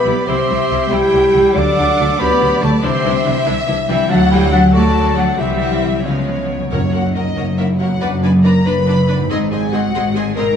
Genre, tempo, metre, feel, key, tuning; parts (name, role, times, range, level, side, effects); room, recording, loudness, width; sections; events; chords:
cinematic; 94 BPM (dotted quarters); 6/8; straight; A4 = 440 Hz
rich symphonic violin section; melody; 0.0-10.6 s; C#5 to D6; -26 LUFS; left 2 dB
clear clarinet; second line; 0.0-6.7 s; G#3 to A4; -24 LUFS; right 1 dB
mellow hollow concert flute; second line; 0.0-6.7 s; C#5 to D6; -23 LUFS; left 2 dB
warm symphonic violin section; second line; 0.0-10.5 s; C#5 to B#5; -25 LUFS; left 4 dB
mellow French horn section; sustained chords; 0.0-10.6 s; C#4 to D5; -19 LUFS; left 2 dB
concert harp; arpeggios; 0.0-10.6 s; F#2 to F#5; -24 LUFS; left 6 dB
warm studio cello section; bass; 0.0-10.5 s; F#2 to D4; -19 LUFS; right 1 dB
warm symphonic double bass section; bass; 0.0-10.5 s; F#1 to D2; -20 LUFS; right 2 dB
warm studio viola section; accompaniment; 0.1-10.4 s; E3 to B4; -24 LUFS; right 1 dB
timpani; percussion; 6.7-7.3 s; F#2; -24 LUFS; left 2 dB
wet recital hall reverb, RT60 1.6 s; -12 LUFS; side -8 dB against mid
0.0-6.7 A section; 6.7-10.6 B section
0.3 C; 1.6 D; 2.8 Cadd9; 4.1 D; 5.4 C; 6.0 C#7; 6.7 F#; 8.0 Bm/F#; 9.3 G#